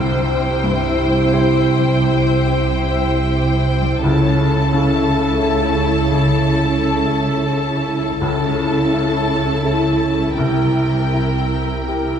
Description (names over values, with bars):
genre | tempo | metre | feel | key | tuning
cinematic, emotional film score for orchestra | 78-90 BPM | 3/4 | rubato | unclear | A4 = 441 Hz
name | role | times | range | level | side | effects
warm studio violin section | melody | 0.0-12.2 s | G5 to A5 | -25 LUFS | left 4 dB | none
warm symphonic violin section | second line | 0.0-12.2 s | A4 to C5 | -24 LUFS | left 3 dB | none
bright baby grand piano | accompaniment | 0.0-12.2 s | C2 to C5 | -24 LUFS | left 1 dB | none
warm studio viola section | accompaniment | 0.0-12.2 s | E4 | -22 LUFS | right 3 dB | none
concert harp | arpeggios | 0.0-12.2 s | C3 to E5 | -23 LUFS | left 4 dB | none
dark studio cello section | bass | 0.0-12.2 s | C3 to C#3 | -23 LUFS | right 3 dB | none
dark studio double bass section | bass | 0.0-12.2 s | C2 to C#2 | -22 LUFS | right 2 dB | none
room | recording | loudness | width
wet scoring stage reverb, RT60 1.7 s | heard from further back in the room | -14 LUFS | side -8 dB against mid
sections
0.0-12.2 A section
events
none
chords
0.0 C; 4.0 A/C#; 10.4 C7